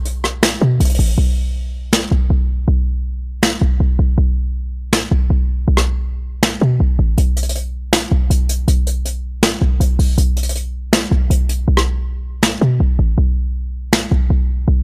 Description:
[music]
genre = hip hop, trap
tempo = 160 BPM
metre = 4/4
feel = half-time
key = unclear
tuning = A4 = 442 Hz
[part]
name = short 808-style bass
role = bass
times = 0.0-14.8 s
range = A1 to B2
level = -18 LUFS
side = equal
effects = none
[part]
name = soft brush drum kit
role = drums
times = 0.1-14.0 s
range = finger snaps, hi-hat, rim click, snare drum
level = -19 LUFS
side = equal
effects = none
[sound]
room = little or no reverb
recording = none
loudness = -17 LUFS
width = mono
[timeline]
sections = 0.0-1.2 A section; 1.2-14.8 B section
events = hi-hats muted 1.2-7.2, 11.7-13.2, 13.2-14.8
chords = none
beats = 0.05 0.43 0.80 | 1.18 1.55 1.93 2.30 | 2.68 3.05 3.43 3.80 | 4.18 4.55 4.93 5.30 | 5.68 6.05 6.43 6.80 | 7.18 7.55 7.93 8.30 | 8.68 9.05 9.43 9.80 | 10.18 10.55 10.93 11.30 | 11.68 12.05 12.43 12.80 | 13.18 13.55 13.93 14.30 | 14.68

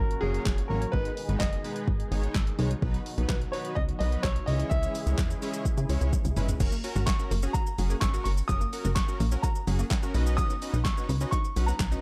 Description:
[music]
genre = dance-pop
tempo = 127 BPM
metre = 4/4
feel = straight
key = unclear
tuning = A4 = 436 Hz
[part]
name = warm baby grand piano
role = melody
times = 0.0-12.0 s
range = G#4 to D#6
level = -37 LUFS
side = equal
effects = delay
[part]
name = filtered supersaw swell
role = sustained chords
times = 0.0-6.6 s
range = A#2 to G#4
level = -41 LUFS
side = equal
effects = sidechain pumping
[part]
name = plucky analog bass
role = bass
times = 0.0-12.0 s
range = F#1 to C#3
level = -30 LUFS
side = equal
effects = sidechain pumping
[part]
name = deep house drum kit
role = drums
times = 0.1-12.0 s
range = crash cymbal, handclaps, hi-hat, kick drum, shaker, snare drum, toms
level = -32 LUFS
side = equal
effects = overdrive
[part]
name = big bright polysynth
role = accompaniment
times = 0.2-12.0 s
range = F#3 to F#5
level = -40 LUFS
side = equal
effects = chorus, sidechain pumping
[part]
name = unison pluck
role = arpeggios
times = 6.6-12.0 s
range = F#3 to F#4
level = -42 LUFS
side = equal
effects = sidechain pumping, delay
[sound]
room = little or no reverb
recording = dark, warm production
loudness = -28 LUFS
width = mono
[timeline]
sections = 0.0-6.6 A section; 6.6-12.0 B section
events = drum fill 6.1-6.6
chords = 0.0 F#; 0.9 G#m; 2.8 B; 4.5 C#m; 6.6 F#; 10.1 Badd9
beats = 0.46 | 0.93 1.41 1.88 2.35 | 2.82 3.29 3.77 4.24 | 4.71 5.18 5.66 6.13 | 6.60 7.08 7.55 8.02 | 8.49 8.96 9.44 9.91 | 10.38 10.85 11.33 11.80

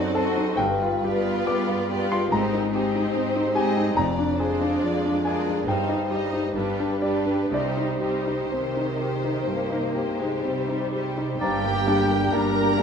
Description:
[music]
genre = classical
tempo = 60-73 BPM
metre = 4/4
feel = rubato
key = C minor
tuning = A4 = 440 Hz
[part]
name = clear concert grand piano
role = melody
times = 0.0-12.8 s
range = C2 to D6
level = -25 LUFS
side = left 1 dB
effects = none
[part]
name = warm symphonic violin section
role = melody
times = 0.0-12.8 s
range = Ab4 to Bb5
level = -32 LUFS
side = left 3 dB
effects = none
[part]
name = rich symphonic violin section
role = second line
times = 0.0-12.8 s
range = Eb4 to D#5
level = -32 LUFS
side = left 2 dB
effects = none
[part]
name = clear symphonic viola section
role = accompaniment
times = 0.0-12.8 s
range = Eb3 to G4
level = -30 LUFS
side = right 2 dB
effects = none
[part]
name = rich symphonic cello section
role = bass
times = 0.0-12.8 s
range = F2 to C3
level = -31 LUFS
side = right 3 dB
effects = none
[part]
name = rich symphonic double bass section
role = bass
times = 0.6-12.8 s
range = F1 to C2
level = -33 LUFS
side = right 4 dB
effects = none
[part]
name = clear oboe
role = second line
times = 11.4-11.8 s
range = D5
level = -34 LUFS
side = right 2 dB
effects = none
[part]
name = large flute ensemble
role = second line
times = 11.4-11.8 s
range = Bb5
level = -34 LUFS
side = left 4 dB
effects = none
[part]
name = warm French horn section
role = sustained chords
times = 11.4-12.8 s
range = Bb3 to D4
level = -29 LUFS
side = left 8 dB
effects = none
[part]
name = warm trumpet section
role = stabs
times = 11.4-12.8 s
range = G4 to Bb4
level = -28 LUFS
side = right 3 dB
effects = none
[sound]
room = moderate scoring stage reverb, RT60 2.0 s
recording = minimal, uncompressed stereo recording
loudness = -22 LUFS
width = side -7 dB against mid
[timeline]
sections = 0.0-11.4 A section; 11.4-12.8 B section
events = none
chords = 0.0 F#dim7; 0.6 G7; 2.3 Abmaj7; 4.0 Ddim/F; 5.7 Cm/G; 6.5 G; 7.5 Cm; 11.4 Gm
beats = | 0.58 1.47 2.30 3.12 | 3.96 4.81 5.66 6.54 | 7.51 8.50 9.46 10.44 | 11.41 12.33

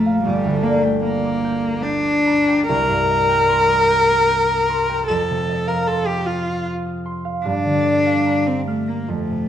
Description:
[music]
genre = classical, romantic duo for cello and harp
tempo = 75 BPM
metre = 3/4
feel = rubato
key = unclear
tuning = A4 = 440 Hz
[part]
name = warm cello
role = melody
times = 0.0-9.5 s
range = G3 to Bb4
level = -17 LUFS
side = left 1 dB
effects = none
[part]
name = concert harp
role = accompaniment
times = 0.0-9.5 s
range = G1 to C7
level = -22 LUFS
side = right 2 dB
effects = none
[sound]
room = wet recital hall reverb, RT60 1.5 s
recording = dark, warm production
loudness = -16 LUFS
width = side -10 dB against mid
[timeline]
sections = 0.0-9.5 A section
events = none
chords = 0.2 Gm; 2.7 Cm7; 5.1 F5; 7.4 Gm7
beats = | 0.24 1.04 1.83 | 2.68 3.48 4.29 | 5.08 5.86 6.65 | 7.45 8.26 9.09

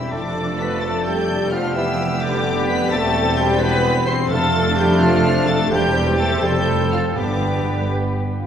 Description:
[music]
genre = classical, dramatic, fast romantic movement for symphony orchestra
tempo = 86 BPM (dotted quarters)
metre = 6/8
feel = straight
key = C major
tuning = A4 = 444 Hz
[part]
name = warm symphonic violin section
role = melody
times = 0.0-7.9 s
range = D6 to C7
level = -28 LUFS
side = left 4 dB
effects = none
[part]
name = clear oboe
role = second line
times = 0.0-8.2 s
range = F5 to B5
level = -30 LUFS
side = equal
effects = none
[part]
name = dark symphonic violin section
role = second line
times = 0.0-8.4 s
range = D4 to D5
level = -30 LUFS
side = left 2 dB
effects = none
[part]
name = large flute ensemble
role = second line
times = 0.0-8.5 s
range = D5 to C6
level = -28 LUFS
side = left 1 dB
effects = none
[part]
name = mellow clarinet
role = second line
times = 0.0-8.4 s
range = B3 to A4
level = -31 LUFS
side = left 2 dB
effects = none
[part]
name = mellow bassoon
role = accompaniment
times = 0.0-8.4 s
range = G3 to C4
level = -28 LUFS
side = right 2 dB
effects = none
[part]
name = rich symphonic viola section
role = accompaniment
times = 0.0-7.9 s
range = D4 to C5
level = -26 LUFS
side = equal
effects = none
[part]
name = mellow French horn section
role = sustained chords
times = 0.0-8.5 s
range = D3 to F4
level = -25 LUFS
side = left 2 dB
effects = none
[part]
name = warm trombone section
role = sustained chords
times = 0.0-8.4 s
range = E3 to C4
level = -28 LUFS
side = right 1 dB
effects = none
[part]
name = clear trumpet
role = stabs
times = 0.0-8.4 s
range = D4 to A4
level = -27 LUFS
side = right 1 dB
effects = none
[part]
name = dark tuba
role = bass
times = 0.0-8.4 s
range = E1 to G1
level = -27 LUFS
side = right 1 dB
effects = none
[part]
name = warm studio cello section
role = bass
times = 0.0-8.4 s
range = E2 to G2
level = -26 LUFS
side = right 1 dB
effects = none
[part]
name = warm symphonic double bass section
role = bass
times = 0.0-8.4 s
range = E1 to G1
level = -26 LUFS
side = right 2 dB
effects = none
[part]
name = timpani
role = percussion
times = 7.2-7.9 s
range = G2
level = -30 LUFS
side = left 1 dB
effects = none
[sound]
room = wet concert hall reverb, RT60 2.1 s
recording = heard from further back in the room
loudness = -16 LUFS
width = side -8 dB against mid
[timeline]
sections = 0.0-8.5 A section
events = none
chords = 0.1 Dm/F; 1.5 G7/F; 2.9 C/E; 4.3 Dm/F; 5.7 C/E; 6.4 F; 7.2 G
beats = | 0.13 0.82 | 1.52 2.22 | 2.91 3.61 | 4.30 5.01 | 5.72 6.43 | 7.16 7.89

